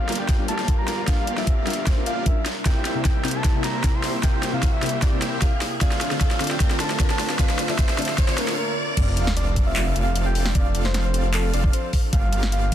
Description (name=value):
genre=future bass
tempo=152 BPM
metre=4/4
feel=half-time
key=unclear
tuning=A4 = 440 Hz
part: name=soft octave-layered synth lead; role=melody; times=0.0-12.7 s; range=A4 to C6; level=-30 LUFS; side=left 2 dB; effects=chorus, sidechain pumping, tape echo
part: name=airy breathy pad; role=sustained chords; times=0.0-12.7 s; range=C3 to Bb4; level=-35 LUFS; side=equal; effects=chorus, vintage 12-bit sampler grit, sidechain pumping
part: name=supersaw chords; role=riff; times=0.0-12.7 s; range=A3 to F5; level=-30 LUFS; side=right 2 dB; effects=sidechain pumping, low-pass filter
part: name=wide detuned saw bass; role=bass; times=0.0-12.7 s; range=D1 to C2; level=-27 LUFS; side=equal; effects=chorus, sidechain pumping, high-pass filter
part: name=riser and sub drop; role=sound effects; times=1.2-10.6 s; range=none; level=-32 LUFS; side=equal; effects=none
part: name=soft round pluck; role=accompaniment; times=0.1-8.4 s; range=C3 to D5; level=-32 LUFS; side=left 3 dB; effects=analog chorus, sidechain pumping, tape echo
part: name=dubstep drum kit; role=drums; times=0.1-12.7 s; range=crash cymbal, handclaps, hi-hat, snare drum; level=-28 LUFS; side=equal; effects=high-pass filter on snare, high-pass filter on hats, high-pass filter on cymbals
part: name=electronic kick drum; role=drums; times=0.3-12.7 s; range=none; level=-20 LUFS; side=equal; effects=none
part: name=airy dreamy lead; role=arpeggios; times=9.0-12.7 s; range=F5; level=-35 LUFS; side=right 1 dB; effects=chorus, sidechain pumping
room=light reverb, digital ambience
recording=dense, heavily limited modern master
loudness=-19 LUFS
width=side -11 dB against mid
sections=0.0-9.0 A section; 9.0-12.7 B section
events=build-up 0.0-9.0; drum fill 0.0-8.6; riser 1.2-9.0; break 8.6-9.0; drop 9.0-12.7; impact 9.0-10.6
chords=0.0 Gm7; 2.5 C7; 5.8 Dm7; 9.0 F6; 12.1 Gm7